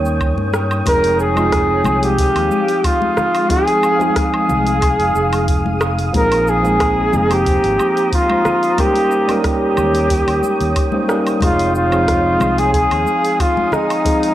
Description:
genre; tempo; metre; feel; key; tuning
sunset chillout; 91 BPM; 4/4; straight; F minor; A4 = 440 Hz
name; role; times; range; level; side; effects
tine electric piano; accompaniment; 0.0-14.3 s; F3 to C5; -21 LUFS; equal; auto-pan, cassette tape
shimmering ambient pad; sustained chords; 0.0-14.3 s; Ab3 to F6; -24 LUFS; equal; chorus, built-in reverb, cassette tape
fingered electric bass; bass; 0.0-13.0 s; F1 to G2; -21 LUFS; equal; tube saturation
deep house drum kit; drums; 0.1-14.3 s; hi-hat, rim click, shaker, woodblock; -25 LUFS; equal; none
electronic kick drum; drums; 0.2-14.2 s; none; -20 LUFS; equal; none
congas and bongos; percussion; 0.4-14.2 s; none; -27 LUFS; left 4 dB; none
warm flugelhorn; melody; 0.9-14.3 s; Eb4 to Bb4; -16 LUFS; equal; cassette tape, analog delay
room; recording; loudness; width
moderate spring reverb, RT60 2.5 s; home recording on cassette; -13 LUFS; side -13 dB against mid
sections
0.0-14.3 A section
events
none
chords
0.0 Eb7; 0.9 Fm7; 6.1 Bb9sus4; 8.8 Eb7; 11.4 Fm7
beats
0.21 | 0.87 1.53 2.19 2.85 | 3.51 4.17 4.83 5.48 | 6.14 6.80 7.46 8.12 | 8.78 9.44 10.10 10.76 | 11.42 12.08 12.74 13.40 | 14.06

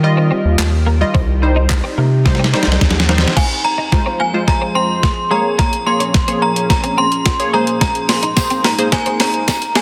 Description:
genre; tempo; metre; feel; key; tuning
dance-pop; 108 BPM; 4/4; straight; F minor; A4 = 440 Hz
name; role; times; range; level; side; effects
funky polysynth comp; accompaniment; 0.0-9.8 s; G3 to Eb5; -23 LUFS; equal; chorus, sidechain pumping
glassy FM pad; sustained chords; 0.0-9.8 s; F2 to C5; -29 LUFS; equal; ensemble chorus, built-in reverb, sidechain pumping
twelve-string electric guitar; riff; 0.0-9.8 s; Ab3 to F4; -26 LUFS; equal; ensemble chorus
round analog bass; bass; 0.0-3.3 s; C2 to Eb3; -17 LUFS; equal; sidechain pumping
crisp 8-bit digital drum machine; drums; 0.6-9.8 s; crash cymbal, handclaps, hi-hat, kick drum, snare drum; -18 LUFS; equal; soft clipping on snare
synth chime; melody; 3.4-9.8 s; Ab5 to C6; -20 LUFS; equal; ensemble chorus, tremolo, tape echo
tambourine; percussion; 8.4-9.6 s; none; -30 LUFS; equal; none
room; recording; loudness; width
light reverb, digital ambience; dense, heavily limited modern master, high-pass filter; -15 LUFS; mono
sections
0.0-3.4 A section; 3.4-9.8 B section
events
drum fill 2.3-3.4, 3.4-9.8; build-up 3.4-9.8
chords
0.0 Ebadd9; 1.1 Cm; 3.4 Fm; 5.3 Bbm7; 7.5 Abadd9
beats
0.03 0.59 | 1.15 1.70 2.26 2.81 | 3.37 3.92 4.48 5.03 | 5.59 6.14 6.70 7.26 | 7.81 8.37 8.92 9.48

